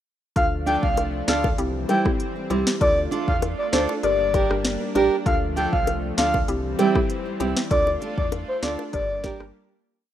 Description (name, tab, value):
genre	dancehall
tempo	98 BPM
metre	4/4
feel	straight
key	D minor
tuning	A4 = 438 Hz
part	breathy flute-like synth lead	melody	0.4-9.4 s	C5 to G5	-24 LUFS	left 1 dB	chorus
part	mallet-like synth pluck	accompaniment	0.4-9.5 s	C4 to Bb4	-31 LUFS	left 3 dB	chorus
part	lush unison pad	sustained chords	0.4-10.1 s	E3 to F4	-31 LUFS	left 1 dB	chorus, sidechain pumping
part	round analog bass	bass	0.4-9.5 s	G1 to E2	-30 LUFS	equal	none
part	afro-pop drum kit	drums	0.4-9.5 s	hi-hat, kick drum, rim click, snare drum	-25 LUFS	equal	none
part	fingerpicked steel-string acoustic guitar	arpeggios	0.7-9.4 s	G3 to Bb4	-25 LUFS	right 5 dB	tape echo
part	bongos	percussion	1.0-9.4 s	none	-30 LUFS	left 8 dB	none
room	light reverb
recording	rough home demo mix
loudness	-20 LUFS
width	side -11 dB against mid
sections	0.4-10.1 chorus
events	fade-out 7.7-10.1; break 9.5-10.1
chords	0.4 Dm; 1.6 C; 2.8 Dm; 4.0 Gm; 5.3 Dm; 6.5 C; 7.7 Dm; 8.9 Gm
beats	| 0.36 0.97 1.59 2.20 | 2.81 3.42 4.04 4.65 | 5.26 5.87 6.48 7.10 | 7.71 8.32 8.93 9.54